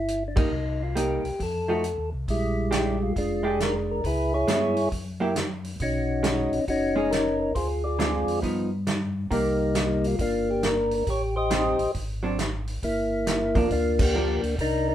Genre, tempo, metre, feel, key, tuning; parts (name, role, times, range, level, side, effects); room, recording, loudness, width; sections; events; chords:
soul jazz organ trio; 137 BPM; 4/4; swing 65% on 8ths; A4 = 440 Hz
percussive tonewheel organ; melody; 0.0-14.9 s; G3 to Eb5; -25 LUFS; left 1 dB; slow rotary speaker
mellow tonewheel organ; bass; 0.0-14.9 s; F1 to G2; -30 LUFS; equal; chorus vibrato, slow rotary speaker
vintage drum kit; drums; 0.1-14.7 s; crash cymbal, hi-hat, kick drum, ride cymbal, snare drum; -29 LUFS; right 1 dB
vintage hollow-body jazz guitar; accompaniment; 0.4-14.4 s; D3 to G4; -28 LUFS; right 2 dB
light reverb; band playing live in one room; -23 LUFS; side -11 dB against mid
0.0-2.3 A section; 2.3-14.9 B section
band accent 0.3, 13.9
0.0 Gm6; 0.5 Cm7; 1.4 F7b9; 2.3 Bb6; 4.0 Dbm7; 4.9 Gb7b9; 5.8 B69; 7.6 Dm7b5; 8.4 Gaug7; 9.3 Cm9; 11.1 Am7b5; 11.9 Ab7#11; 12.8 Gm7